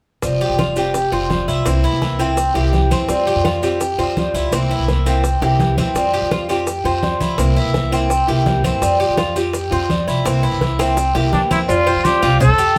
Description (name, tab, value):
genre	latin, Cuban son and guajira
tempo	168 BPM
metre	4/4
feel	straight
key	unclear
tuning	A4 = 440 Hz
part	picked old ladder-braced acoustic guitar	accompaniment	0.2-12.8 s	C3 to F4	-23 LUFS	equal	none
part	upright bass	bass	0.2-12.8 s	F1 to F3	-22 LUFS	equal	none
part	bongos and cowbell	percussion	0.2-12.6 s	none	-29 LUFS	equal	none
part	congas	percussion	0.2-12.8 s	none	-25 LUFS	equal	none
part	guiro	percussion	0.2-12.8 s	none	-34 LUFS	equal	none
part	maracas	percussion	0.2-12.8 s	none	-36 LUFS	equal	none
part	Cuban tres	arpeggios	0.4-12.8 s	C4 to C5	-23 LUFS	equal	none
part	breathy trumpet	melody	11.3-12.8 s	D4 to A4	-19 LUFS	equal	none
room	moderate studio ambience, RT60 0.4 s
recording	band playing live in one room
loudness	-17 LUFS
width	mono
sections	0.2-11.7 A section; 11.7-12.8 B section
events	drum fill 5.4-6.0, 10.6-11.7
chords	0.2 Fsus2; 1.7 C7; 3.1 Fsus2; 4.5 C7; 6.0 Fsus2; 7.4 C7; 8.8 Fsus2; 10.3 C7; 11.7 Fadd9